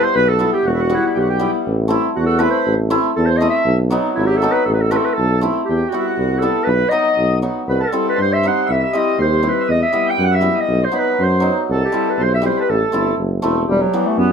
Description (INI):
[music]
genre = klezmer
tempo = 120 BPM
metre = 2/4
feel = straight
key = A dorian sharp4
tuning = A4 = 441 Hz
[part]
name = mellow clarinet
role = melody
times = 0.0-14.3 s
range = F#3 to G5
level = -18 LUFS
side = right 1 dB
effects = none
[part]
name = mellow accordion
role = second line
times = 0.0-14.3 s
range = G3 to G5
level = -24 LUFS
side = equal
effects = none
[part]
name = hammered dulcimer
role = accompaniment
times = 0.0-14.3 s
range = E3 to E4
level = -20 LUFS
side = left 1 dB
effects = none
[part]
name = warm tuba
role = bass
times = 0.2-14.3 s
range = E1 to G2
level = -18 LUFS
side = equal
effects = none
[sound]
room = light reverb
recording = close, detailed microphones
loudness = -14 LUFS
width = side -6 dB against mid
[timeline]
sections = 0.0-5.7 A section; 5.7-13.7 B section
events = none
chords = 0.0 Em; 1.6 Am; 3.7 B; 4.7 Am; 5.7 Em; 6.7 B; 7.7 C; 9.7 Em; 10.7 B; 11.7 C; 12.7 Am; 13.7 Em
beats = 0.14 | 0.64 1.15 | 1.65 2.15 | 2.66 3.16 | 3.66 4.16 | 4.67 5.17 | 5.67 6.17 | 6.68 7.18 | 7.68 8.18 | 8.68 9.18 | 9.69 10.19 | 10.69 11.19 | 11.69 12.19 | 12.69 13.19 | 13.69 14.19